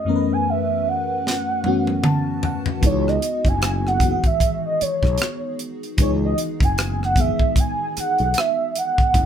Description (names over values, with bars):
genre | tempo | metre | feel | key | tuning
R&B, neo-soul | 76 BPM | 4/4 | swing 59% on 16ths | C# minor | A4 = 440 Hz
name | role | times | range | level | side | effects
warm velvety synth lead | melody | 0.0-9.3 s | C#5 to G#5 | -22 LUFS | right 2 dB | chorus
FM electric piano with soft pad layer | accompaniment | 0.0-9.2 s | F#2 to A5 | -24 LUFS | left 2 dB | chorus, phaser
tight funk drum kit | drums | 1.3-9.3 s | hi-hat, kick drum, rim click, snare drum, toms | -20 LUFS | equal | none
fretless electric bass | bass | 2.8-9.3 s | F#1 to C#2 | -23 LUFS | equal | none
room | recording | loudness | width
light reverb | band playing live in one room | -18 LUFS | side -9 dB against mid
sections
0.0-9.3 A section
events
drum fill 1.2-2.8; FM electric piano fill 1.6-2.8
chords
0.0 F#m11; 2.8 C#m11 (rootless)